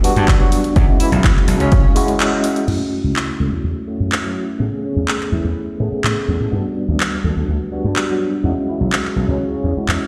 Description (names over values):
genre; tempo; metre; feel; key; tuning
filtered disco house; 125 BPM; 4/4; straight; F# minor; A4 = 440 Hz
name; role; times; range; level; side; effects
overdriven tine electric piano; accompaniment; 0.0-10.1 s; G3 to G#4; -23 LUFS; equal; fast tremolo, phaser, vintage 12-bit sampler grit, sidechain pumping, low-pass filter
house drum kit; drums; 0.0-10.0 s; crash cymbal, handclaps, hi-hat; -24 LUFS; equal; sidechain pumping on hats, small room ambience, sidechain pumping on cymbals
gritty slap bass; bass; 0.2-10.0 s; B1 to A2; -21 LUFS; equal; overdrive, sidechain pumping, low-pass filter
electronic kick drum; drums; 0.3-1.8 s; none; -16 LUFS; equal; small room ambience
mellow horn section; melody; 0.4-9.8 s; C#3 to A4; -28 LUFS; equal; vintage 12-bit sampler grit, sidechain pumping, low-pass filter, digital delay
room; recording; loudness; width
light reverb, digital ambience; played on a big sound system in a bare room, stone room reverb; -18 LUFS; mono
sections
0.0-2.7 A section; 2.7-10.1 B section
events
filter sweep 0.0-2.7, 2.7-10.1; break 2.2-2.7; band accent 2.2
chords
0.0 Gmaj7; 0.8 E69; 2.7 F#m7; 4.6 Amaj9; 6.5 Gmaj7; 8.4 E69